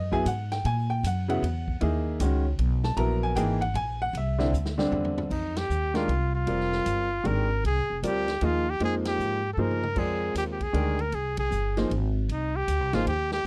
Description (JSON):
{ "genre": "modal jazz", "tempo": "154 BPM", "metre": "3/4", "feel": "swing 64% on 8ths", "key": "F dorian from 5.3 s", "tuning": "A4 = 439 Hz", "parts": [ { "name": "bright baby grand piano", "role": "accompaniment", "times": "0.0-13.1 s", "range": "C#3 to A#5", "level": "-31 LUFS", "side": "equal", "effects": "none" }, { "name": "upright bass", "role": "bass", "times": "0.0-13.4 s", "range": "F1 to A#2", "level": "-31 LUFS", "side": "equal", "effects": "none" }, { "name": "swinging big-band drum kit", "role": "drums", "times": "0.1-13.4 s", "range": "crash cymbal, hi-hat, kick drum, ride cymbal, snare drum, toms", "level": "-41 LUFS", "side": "equal", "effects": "none" }, { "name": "clear trumpet", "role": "melody", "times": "5.3-13.5 s", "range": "Eb4 to Bb4", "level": "-31 LUFS", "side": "equal", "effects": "none" } ], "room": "little or no reverb", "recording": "dry, close 1970s-style studio recording", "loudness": "-27 LUFS", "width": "mono", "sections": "0.0-5.3 A section; 5.3-13.5 B section", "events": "drum fill 4.5-5.3, 9.6-10.0; band accent 5.5, 9.0, 11.3", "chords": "0.0 C#m9 (rootless); 0.6 D#m; 4.1 C; 5.3 Fm9", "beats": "0.26 | 0.65 1.04 1.43 | 1.81 2.20 2.59 | 2.98 3.37 3.75 | 4.14 4.53 4.92 | 5.30 5.69 6.08 | 6.47 6.86 7.25 | 7.63 8.02 8.41 | 8.80 9.19 9.57 | 9.96 10.35 10.74 | 11.13 11.52 11.91 | 12.29 12.68 13.07 | 13.46" }